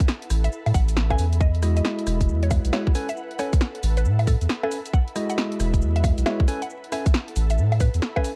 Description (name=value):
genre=UK garage, two-step garage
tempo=136 BPM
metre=4/4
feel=swing 63% on 16ths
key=unclear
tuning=A4 = 440 Hz
part: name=mallet-like synth pluck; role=melody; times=0.0-8.3 s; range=A4 to G#5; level=-35 LUFS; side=equal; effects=chorus
part: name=electronic kick drum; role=drums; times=0.0-8.2 s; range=none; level=-23 LUFS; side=equal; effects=none
part: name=punchy analog drum machine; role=drums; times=0.0-8.4 s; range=bongos, hi-hat, rim click, shaker, snare drum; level=-31 LUFS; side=equal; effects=none
part: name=ethereal airy pad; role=texture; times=0.0-8.4 s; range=E4 to B5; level=-40 LUFS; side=equal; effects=ensemble chorus, built-in reverb, sidechain pumping
part: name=soft dub sub bass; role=bass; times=0.3-8.0 s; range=E1 to A2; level=-23 LUFS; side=equal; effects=none
part: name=tine electric piano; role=stabs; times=1.1-8.3 s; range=G#3 to G#5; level=-31 LUFS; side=equal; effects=none
room=little or no reverb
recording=dark, warm production, vinyl crackle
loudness=-23 LUFS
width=mono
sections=0.0-8.4 A section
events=none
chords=0.0 Asus2; 1.4 Emaj9; 3.0 Amaj9; 4.9 Emaj9; 6.5 Amaj9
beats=0.08 0.52 0.96 | 1.41 1.85 2.29 2.73 | 3.17 3.61 4.05 4.49 | 4.93 5.38 5.82 6.26 | 6.70 7.14 7.58 8.02